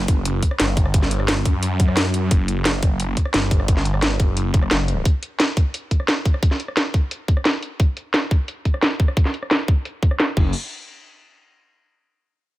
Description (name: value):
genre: dark technical drum and bass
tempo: 175 BPM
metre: 4/4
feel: straight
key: unclear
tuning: A4 = 440 Hz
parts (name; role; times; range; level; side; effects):
- phased detuned saw bass; bass; 0.0-5.0, 10.4-10.5 s; F#1 to F#2; -21 LUFS; equal; phaser, overdrive, sidechain pumping
- drum and bass drum kit; drums; 0.1-10.4 s; crash cymbal, hi-hat, rim click, snare drum; -22 LUFS; equal; low-pass filter on hats, low-pass filter on snare, low-pass filter on cymbals, low-pass filter on room
- electronic kick drum; drums; 0.1-10.4 s; none; -17 LUFS; equal; none
room: digital ambience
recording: none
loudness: -17 LUFS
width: side -16 dB against mid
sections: 0.0-10.5 A section; 10.5-11.9 B section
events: filter sweep on drum 0.0-10.5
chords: none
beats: 0.25 0.60 | 0.94 1.28 1.63 1.97 | 2.31 2.65 3.00 3.34 | 3.68 4.03 4.37 4.71 | 5.05 5.40 5.74 6.08 | 6.43 6.77 7.11 7.45 | 7.80 8.14 8.48 8.83 | 9.17 9.51 9.85 10.20